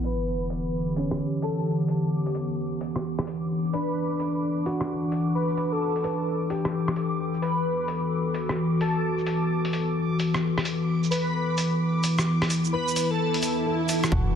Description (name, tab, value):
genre	future garage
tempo	130 BPM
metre	4/4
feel	swing 64% on 16ths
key	unclear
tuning	A4 = 439 Hz
part	felt-muted upright piano	accompaniment	0.0-14.4 s	B3 to B4	-35 LUFS	right 2 dB	sidechain pumping, digital delay
part	warbly tape-like pad	sustained chords	0.0-14.4 s	D3 to B4	-26 LUFS	left 1 dB	chorus, built-in reverb, sidechain pumping
part	lo-fi sampler-style drum kit	drums	0.0-14.1 s	hi-hat, rim click, shaker	-31 LUFS	equal	soft clipping on snare, low-pass filter on snare, studio reverb, low-pass filter on perc, low-pass filter on hats
part	sub drop and swell	sound effects	0.0-1.2, 13.3-14.4 s	none	-32 LUFS	equal	none
part	backwards swelling texture	texture	2.2-14.1 s	D6	-38 LUFS	equal	built-in reverb
part	airy dreamy lead	melody	0.1-13.7 s	A4 to B4	-31 LUFS	equal	chorus, cassette tape, digital delay
part	soft 808-style bass	bass	14.1-14.4 s	E1	-26 LUFS	equal	sidechain pumping
part	electronic kick drum	drums	14.1-14.2 s	none	-26 LUFS	equal	studio reverb
room	moderate huge ambient reverb, RT60 4.1 s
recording	dense, heavily limited modern master, vinyl crackle, low-pass filter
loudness	-24 LUFS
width	side -8 dB against mid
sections	0.0-14.1 A section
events	impact 0.0-1.2, 14.1; filter sweep on drum 0.0-14.1; filter sweep 0.0-14.1; swell 13.3-14.1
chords	0.0 Em7; 6.7 D6/E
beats	0.27 0.73 | 1.19 1.66 2.12 2.58 | 3.04 3.50 3.96 4.42 | 4.89 5.35 5.81 6.27 | 6.73 7.19 7.66 8.12 | 8.58 9.04 9.50 9.96 | 10.43 10.89 11.35 11.81 | 12.27 12.73 13.19 13.66 | 14.12